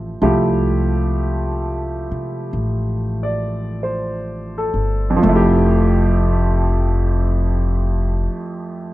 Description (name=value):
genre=jazz ballad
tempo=41-55 BPM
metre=4/4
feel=swing 66% on 8ths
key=F major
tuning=A4 = 440 Hz
part: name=clear upright piano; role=accompaniment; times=0.0-8.9 s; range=F2 to D5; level=-19 LUFS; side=right 1 dB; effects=none
part: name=upright bass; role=bass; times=0.0-8.3 s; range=F1 to C3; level=-19 LUFS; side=equal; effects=none
room=little or no reverb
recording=dry, close 1970s-style studio recording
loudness=-16 LUFS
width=side -16 dB against mid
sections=0.0-5.2 A section; 5.2-8.9 B section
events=slowing down 0.0-5.2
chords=0.0 Fmaj9